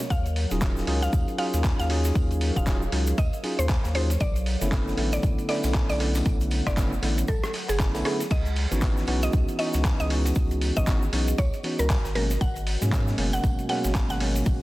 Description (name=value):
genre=deep house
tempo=117 BPM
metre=4/4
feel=swing 59% on 16ths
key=unclear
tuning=A4 = 440 Hz
part: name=mallet-like synth pluck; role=melody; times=0.0-14.2 s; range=G#4 to F#5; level=-32 LUFS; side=equal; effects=chorus, tape echo
part: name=dark analog pad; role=sustained chords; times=0.0-14.6 s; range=F#3 to F#5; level=-38 LUFS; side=right 1 dB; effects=chorus, phaser, sidechain pumping
part: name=crisp fusion drum kit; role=drums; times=0.0-14.6 s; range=hi-hat, snare drum, tambourine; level=-42 LUFS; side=left 1 dB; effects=high-pass filter on hats, high-pass filter on snare, high-pass filter on perc, high-pass filter on room
part: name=dusty soul sampler-style drum kit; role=drums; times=0.0-14.6 s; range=crash cymbal, handclaps, hi-hat, rim click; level=-34 LUFS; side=equal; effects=none
part: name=warm sub bass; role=bass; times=0.1-14.6 s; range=D#1 to G#2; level=-26 LUFS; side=equal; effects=none
part: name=electronic kick drum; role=drums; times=0.1-14.6 s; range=none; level=-25 LUFS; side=equal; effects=none
part: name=egg shaker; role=percussion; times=0.1-14.6 s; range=none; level=-41 LUFS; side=right 1 dB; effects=none
part: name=tine electric piano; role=stabs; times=0.5-14.6 s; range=B2 to G#4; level=-30 LUFS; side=equal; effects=sidechain pumping
room=light reverb, studio reverb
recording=dense, heavily limited modern master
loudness=-22 LUFS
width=side -18 dB against mid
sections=0.0-14.6 A section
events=none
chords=0.1 D#m11; 4.2 Bm11; 8.3 C#m11; 12.2 G#m11